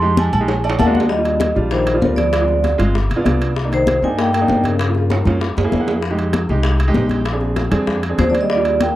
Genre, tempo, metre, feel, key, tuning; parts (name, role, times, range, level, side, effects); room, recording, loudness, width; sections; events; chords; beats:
Afro-Cuban jazz; 195 BPM; 4/4; straight; Eb major; A4 = 439 Hz
vibraphone with soft mallets; melody; 0.0-5.2, 8.2-9.0 s; Bb4 to C6; -19 LUFS; right 2 dB
warm upright piano; accompaniment; 0.0-8.8 s; G3 to F#5; -22 LUFS; right 2 dB
upright bass; bass; 0.0-8.9 s; G1 to G2; -19 LUFS; equal
congas; percussion; 0.0-9.0 s; -22 LUFS; left 2 dB
agogo bells and timbales; percussion; 0.2-9.0 s; -25 LUFS; right 4 dB
cowbell and bongos; percussion; 0.2-9.0 s; -26 LUFS; left 4 dB
mellow trombone; second line; 0.8-5.2, 8.2-9.0 s; Db3 to C4; -22 LUFS; left 6 dB
light reverb; dry, close 1970s-style studio recording; -14 LUFS; side -14 dB against mid
0.0-1.1 A section; 1.1-9.0 B section
vibraphone solo 0.0-1.1; drum fill 0.5-1.1, 5.1-6.0; upright piano fill 0.5-1.1, 3.1-3.6, 5.6-6.0
0.5 Bbaug7; 1.1 Ebmaj7; 2.3 Dm7b5; 2.9 G7; 3.6 Cm9; 4.8 Gm7b5; 5.4 Gb9; 6.0 Fm7; 7.3 Bb7
0.18 0.49 0.79 | 1.10 1.41 1.72 2.02 | 2.33 2.64 2.95 3.26 | 3.56 3.87 4.18 4.49 | 4.80 5.11 5.41 5.72 | 6.03 6.34 6.64 6.95 | 7.26 7.57 7.88 8.19 | 8.49 8.80